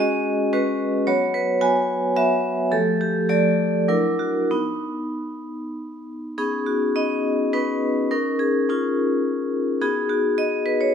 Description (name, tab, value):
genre	classical, contemporary piece for solo vibraphone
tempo	93-111 BPM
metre	3/4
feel	rubato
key	B lydian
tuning	A4 = 439 Hz
part	vibraphone with medium hard mallets	solo	0.0-10.9 s	F3 to G#5	-20 LUFS	equal	none
room	moderate concert hall reverb, RT60 2.0 s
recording	close, detailed microphones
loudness	-19 LUFS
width	side -7 dB against mid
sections	0.0-6.4 A section; 6.4-10.9 A section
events	none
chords	0.0 G#m7; 1.1 F#11; 2.7 F69; 3.9 F#aug7; 4.5 N.C.; 6.4 Badd9; 8.1 C#add9; 9.8 B